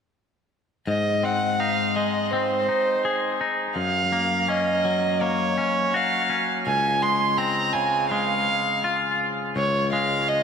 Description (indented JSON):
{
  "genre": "rock",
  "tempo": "83 BPM",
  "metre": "4/4",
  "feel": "straight",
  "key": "Db major",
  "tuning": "A4 = 440 Hz",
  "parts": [
    { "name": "rich violin", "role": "melody", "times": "0.9-10.4 s", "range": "C5 to C6", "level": "-23 LUFS", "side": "right 2 dB", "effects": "slapback echo, digital delay" },
    { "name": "twangy electric guitar", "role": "arpeggios", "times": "0.9-10.4 s", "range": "Db2 to Ab4", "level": "-24 LUFS", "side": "left 4 dB", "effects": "slapback echo, digital delay" }
  ],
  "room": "wet lush hall reverb, RT60 3.0 s",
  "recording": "big arena sound",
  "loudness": "-21 LUFS",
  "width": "side -6 dB against mid",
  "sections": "0.9-10.4 A section",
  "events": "none",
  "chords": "0.9 Ab; 3.8 Gbmaj7; 6.7 Dbmaj7",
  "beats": "| 0.87 1.59 2.31 3.04 | 3.76 4.49 5.21 5.93 | 6.66 7.38 8.11 8.83 | 9.56 10.29"
}